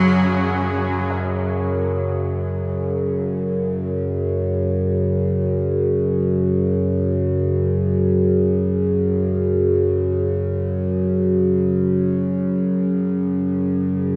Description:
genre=dark ambient drone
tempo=free time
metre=none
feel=none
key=unclear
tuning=A4 = 440 Hz
part: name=clear cello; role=melody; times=0.0-0.7 s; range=F#3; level=-26 LUFS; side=equal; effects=diffuse ambient delay
part: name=warm studio cello section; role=sustained chords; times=0.0-1.1 s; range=F#3 to G#4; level=-31 LUFS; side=equal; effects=none
part: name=overtone-sweeping drone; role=drone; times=0.0-14.2 s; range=F#2 to C#3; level=-20 LUFS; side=equal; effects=chorus, built-in reverb
part: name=flickering grainy texture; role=texture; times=0.0-1.2 s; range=none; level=barely audible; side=none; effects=none
room=wet cathedral reverb, RT60 6.5 s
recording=nothing above 10.6 kHz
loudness=-20 LUFS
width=mono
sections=0.0-1.1 A section; 1.1-14.2 B section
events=none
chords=0.0 F#sus2; 1.1 F#5

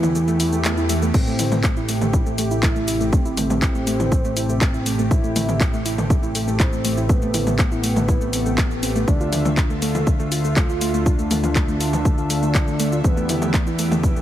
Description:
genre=melodic techno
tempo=121 BPM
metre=4/4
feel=straight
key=A minor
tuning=A4 = 440 Hz
part: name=expressive portamento lead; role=melody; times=0.0-13.7 s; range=E3 to F4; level=-26 LUFS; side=equal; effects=lush chorus, sidechain pumping, ping-pong delay
part: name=lush unison pad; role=sustained chords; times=0.0-14.2 s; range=C3 to E5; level=-29 LUFS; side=equal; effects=chorus, sidechain pumping
part: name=soft round pluck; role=arpeggios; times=0.0-14.2 s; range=A3 to F4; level=-26 LUFS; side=right 1 dB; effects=chorus, sidechain pumping, digital delay
part: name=fat analog bass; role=bass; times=0.0-14.2 s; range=A1 to E2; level=-24 LUFS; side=equal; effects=sidechain pumping
part: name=house drum kit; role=drums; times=0.0-14.2 s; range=crash cymbal, handclaps, hi-hat, shaker, toms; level=-26 LUFS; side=equal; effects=none
part: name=swell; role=sound effects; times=0.4-1.1 s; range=none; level=-34 LUFS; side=right 3 dB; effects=none
part: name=electronic kick drum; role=drums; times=1.1-14.1 s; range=none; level=-19 LUFS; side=equal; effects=none
room=light reverb, digital ambience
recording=heavily compressed radio sound, multiband compression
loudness=-17 LUFS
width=side -12 dB against mid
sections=0.0-14.2 A section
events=kick drops out 0.2-1.1; swell 0.4-1.1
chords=0.0 Em; 1.1 Am7; 9.1 Dm; 13.0 Em

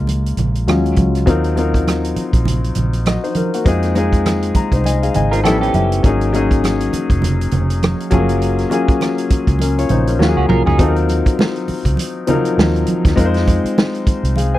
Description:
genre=lush 1970s-style soul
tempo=101 BPM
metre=4/4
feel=swing 58% on 16ths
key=Eb dorian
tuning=A4 = 435 Hz
part: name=warm grand piano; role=accompaniment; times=0.0-14.6 s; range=F3 to Bb5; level=-18 LUFS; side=left 3 dB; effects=none
part: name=vintage muted fingered electric bass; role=bass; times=0.0-14.6 s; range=F1 to F2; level=-18 LUFS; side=equal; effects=none
part: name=vintage drum kit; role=drums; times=0.1-14.5 s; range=hi-hat, kick drum, rim click, snare drum, toms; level=-18 LUFS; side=right 1 dB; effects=none
part: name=congas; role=percussion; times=0.1-14.5 s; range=none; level=-23 LUFS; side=right 4 dB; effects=none
part: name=semi-hollow electric guitar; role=riff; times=5.3-6.0, 10.4-11.0 s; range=C#4 to Bb4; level=-19 LUFS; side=right 4 dB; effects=wide subtle chorus
room=little or no reverb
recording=dry, close 1970s-style studio recording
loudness=-13 LUFS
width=side -15 dB against mid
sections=0.0-1.3 A section; 1.3-10.8 A section; 10.8-14.6 B section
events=grand piano solo 0.0-1.3; grand piano fill 4.3-6.0; drum fill 10.2-10.8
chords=0.0 Gbmaj9 (rootless); 0.7 Ebm11; 1.3 Ebm69; 3.7 Fm7; 5.4 A9; 6.0 Ab9sus4; 8.1 Gbmaj9; 10.2 Ebm11; 10.8 Ebm69; 13.2 Fm7

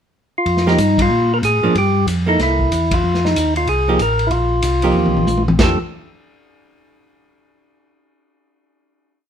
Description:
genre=soul jazz organ trio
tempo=187 BPM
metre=4/4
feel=swing 62% on 8ths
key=F mixolydian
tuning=A4 = 441 Hz
part: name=percussive tonewheel organ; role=melody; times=0.4-5.8 s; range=Eb4 to Bb4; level=-17 LUFS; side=equal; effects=overdrive, stopped rotary speaker
part: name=mellow tonewheel organ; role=bass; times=0.5-5.8 s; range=A1 to Bb2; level=-19 LUFS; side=equal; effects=chorus vibrato, slow rotary speaker
part: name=vintage drum kit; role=drums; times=0.5-5.7 s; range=crash cymbal, hi-hat, kick drum, ride cymbal, snare drum, toms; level=-21 LUFS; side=left 1 dB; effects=none
part: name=archtop guitar, miked and amplified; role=accompaniment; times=0.7-5.8 s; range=F3 to A4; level=-19 LUFS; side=right 3 dB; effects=none
room=moderate studio reverb, RT60 0.8 s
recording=minimal, uncompressed stereo recording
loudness=-14 LUFS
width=side -8 dB against mid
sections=0.0-0.5 pickup bar; 0.5-5.6 A section; 5.6-6.9 final chord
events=band accent 0.9, 2.9; drum fill 5.0-5.6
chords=0.5 F9sus4; 1.7 Gm7; 2.4 C6; 3.0 F9sus4; 5.6 F69

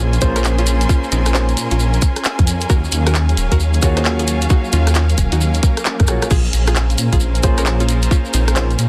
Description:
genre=UK garage, two-step garage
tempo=133 BPM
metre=4/4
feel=swing 63% on 16ths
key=Bb minor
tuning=A4 = 439 Hz
part: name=soft string machine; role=sustained chords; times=0.0-8.9 s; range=Gb3 to F5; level=-33 LUFS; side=equal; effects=none
part: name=dark detuned saw bass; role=bass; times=0.0-8.9 s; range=Eb1 to Bb2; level=-18 LUFS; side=equal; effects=none
part: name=rich studio string section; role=texture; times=0.0-8.9 s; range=Gb3 to C6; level=-29 LUFS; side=equal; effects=sidechain pumping
part: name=garage drum kit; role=drums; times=0.1-8.9 s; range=crash cymbal, handclaps, hi-hat, rim click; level=-24 LUFS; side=equal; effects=soft clipping on snare
part: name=maracas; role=percussion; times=0.1-8.9 s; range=none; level=-29 LUFS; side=equal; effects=none
part: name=warm grand piano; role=stabs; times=0.2-8.7 s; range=Bb3 to Db5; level=-25 LUFS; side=equal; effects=delay
part: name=electronic kick drum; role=drums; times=0.2-8.2 s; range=none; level=-17 LUFS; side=equal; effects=none
part: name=string-like resonator pluck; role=melody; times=0.4-8.8 s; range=C4 to C5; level=-30 LUFS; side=equal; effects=chorus, dub echo
part: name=swell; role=sound effects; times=5.6-6.3 s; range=none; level=-32 LUFS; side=equal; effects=none
room=little or no reverb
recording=dense, heavily limited modern master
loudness=-16 LUFS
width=mono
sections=0.0-8.9 A section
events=swell 5.6-6.3; drum fill 6.0-6.3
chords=0.0 Bbm9; 2.7 Ebm11; 6.3 Bbm9

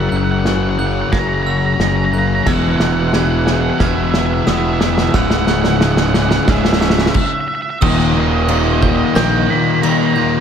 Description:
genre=post-rock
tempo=90 BPM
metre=4/4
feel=straight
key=unclear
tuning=A4 = 445 Hz
part: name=octave-fuzz lead guitar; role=melody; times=0.0-10.3 s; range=D#5 to B5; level=-21 LUFS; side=right 3 dB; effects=distortion, slapback echo, tape echo
part: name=pedal steel guitar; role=sustained chords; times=0.0-10.4 s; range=C#3 to A#4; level=-31 LUFS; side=right 1 dB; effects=none
part: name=glockenspiel with brass mallets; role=arpeggios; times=0.0-10.4 s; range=D#6 to A#6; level=-28 LUFS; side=right 5 dB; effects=slapback echo, tape echo
part: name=twangy electric guitar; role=arpeggios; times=0.0-10.4 s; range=C#2 to F#4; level=-24 LUFS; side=left 1 dB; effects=spring reverb, tape echo
part: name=thick fuzz guitar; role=riff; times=0.0-10.4 s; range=C#2 to F#3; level=-18 LUFS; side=left 7 dB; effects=distortion
part: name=fuzz fingered electric bass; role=bass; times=0.0-9.5 s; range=C#1 to A#1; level=-20 LUFS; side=right 1 dB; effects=overdrive
part: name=loose indie drum kit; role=drums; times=0.5-10.0 s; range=crash cymbal, kick drum, snare drum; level=-18 LUFS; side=right 1 dB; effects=none
part: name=raw garage guitar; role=riff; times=2.5-10.4 s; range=C#2 to E3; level=-22 LUFS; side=right 11 dB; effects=overdrive
room=moderate concert hall reverb, RT60 2.2 s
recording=big arena sound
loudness=-13 LUFS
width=side -8 dB against mid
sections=0.0-7.8 A section; 7.8-10.4 B section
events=build-up 0.0-7.8; drum fill 0.0-7.2; stop 7.2-7.8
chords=0.0 F#7; 2.5 Emaj7; 5.1 C#m7; 7.8 D#

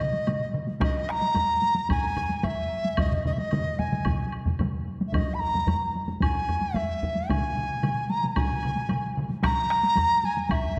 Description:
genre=japanese traditional, taiko drum ensemble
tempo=111 BPM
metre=4/4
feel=straight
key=unclear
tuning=A4 = 439 Hz
part: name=large dizi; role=melody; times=0.0-10.8 s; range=Eb5 to Cb6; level=-29 LUFS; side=equal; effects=none
part: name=taiko ensemble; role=percussion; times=0.0-9.3 s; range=none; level=-34 LUFS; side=equal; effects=none
part: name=woodblock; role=percussion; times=0.0-10.6 s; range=none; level=-42 LUFS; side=equal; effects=none
part: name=taiko ensemble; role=percussion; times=0.1-10.6 s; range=none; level=-34 LUFS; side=equal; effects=none
part: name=solo taiko drums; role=percussion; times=0.8-10.6 s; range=none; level=-34 LUFS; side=equal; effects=none
part: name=taiko ensemble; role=percussion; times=0.8-10.8 s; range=none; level=-34 LUFS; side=equal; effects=none
room=wet scoring stage reverb, RT60 2.0 s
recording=none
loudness=-26 LUFS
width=mono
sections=0.0-10.8 A section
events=none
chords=none

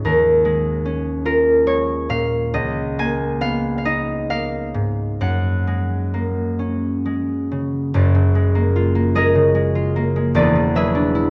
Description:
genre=classical, solo harp piece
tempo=43-51 BPM (dotted quarters)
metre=6/8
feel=rubato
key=F# major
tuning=A4 = 439 Hz
part: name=concert harp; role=solo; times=0.0-11.3 s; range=E1 to Ab5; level=-19 LUFS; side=equal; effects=none
room=moderate recital hall reverb, RT60 1.3 s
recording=worn, warbling old tape, cassette tape, warbly pitch drift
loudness=-19 LUFS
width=mono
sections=0.0-7.9 A section; 7.9-11.3 B section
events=none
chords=0.1 Eb9sus4; 2.5 C#13; 5.2 F#add9; 7.9 F#maj9; 10.4 E9

